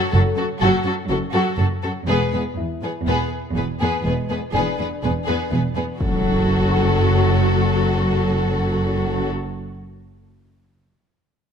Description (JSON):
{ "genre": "cinematic, suspense film score", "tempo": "62 BPM", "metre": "4/4", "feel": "straight", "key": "F# minor", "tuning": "A4 = 442 Hz", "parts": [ { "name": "rich chamber violin section", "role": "melody", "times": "0.0-9.3 s", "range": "A4 to B4", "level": "-28 LUFS", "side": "left 5 dB", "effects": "none" }, { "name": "warm symphonic violin section", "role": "second line", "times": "0.0-9.3 s", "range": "F#4 to G#4", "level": "-26 LUFS", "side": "left 2 dB", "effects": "none" }, { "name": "rich chamber viola section", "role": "accompaniment", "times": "0.0-9.3 s", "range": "F#3 to B3", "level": "-28 LUFS", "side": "right 2 dB", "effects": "none" }, { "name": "celesta", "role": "texture", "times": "0.0-6.0 s", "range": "D4 to E5", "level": "-35 LUFS", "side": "left 6 dB", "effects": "none" }, { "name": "mellow French horn section", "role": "sustained chords", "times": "0.1-9.3 s", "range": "F#3 to B4", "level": "-26 LUFS", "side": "left 5 dB", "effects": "none" }, { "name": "rich symphonic cello section", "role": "riff", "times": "0.1-5.8 s", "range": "E2 to F#3", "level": "-26 LUFS", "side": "right 1 dB", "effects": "none" }, { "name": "rich studio cello section", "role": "bass", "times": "0.1-9.3 s", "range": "E2 to F#2", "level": "-24 LUFS", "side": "right 2 dB", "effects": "none" }, { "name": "warm chamber double bass section", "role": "bass", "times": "0.1-9.3 s", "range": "E1 to F#1", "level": "-24 LUFS", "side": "right 2 dB", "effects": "none" }, { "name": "impact", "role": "sound effects", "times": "6.0-9.3 s", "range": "none", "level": "-27 LUFS", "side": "left 1 dB", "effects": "none" } ], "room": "light reverb", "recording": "none", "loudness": "-18 LUFS", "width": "side -7 dB against mid", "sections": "0.0-6.0 A section; 6.0-9.8 B section", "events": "impact 6.0-9.8", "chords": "0.0 F#m; 2.1 E; 6.0 F#m" }